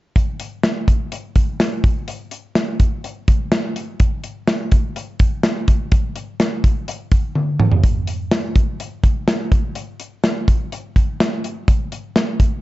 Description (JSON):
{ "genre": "pop", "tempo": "125 BPM", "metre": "4/4", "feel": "straight", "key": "none", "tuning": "none", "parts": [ { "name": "modern studio drum kit", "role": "drums", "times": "0.2-12.5 s", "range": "hi-hat, kick drum, snare drum, toms", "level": "-16 LUFS", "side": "equal", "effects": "none" } ], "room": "light reverb", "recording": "dark, warm production, nothing above 7.7 kHz", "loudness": "-17 LUFS", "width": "side -17 dB against mid", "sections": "0.2-12.6 A section", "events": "drum fill 7.4-7.8", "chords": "none" }